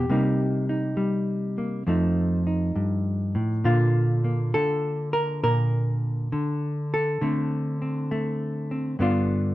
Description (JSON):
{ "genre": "solo jazz", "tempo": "67 BPM", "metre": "4/4", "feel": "swing 67% on 8ths", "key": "unclear", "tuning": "A4 = 442 Hz", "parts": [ { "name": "hollow-body jazz guitar", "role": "solo", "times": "0.0-9.5 s", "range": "F2 to Bb4", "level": "-22 LUFS", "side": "equal", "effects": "none" } ], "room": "light reverb", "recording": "dark, warm production", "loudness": "-22 LUFS", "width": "side -16 dB against mid", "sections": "0.0-9.5 A section", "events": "none", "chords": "0.1 Cm7; 1.9 F7; 3.6 Bb; 7.2 D5; 9.0 G7" }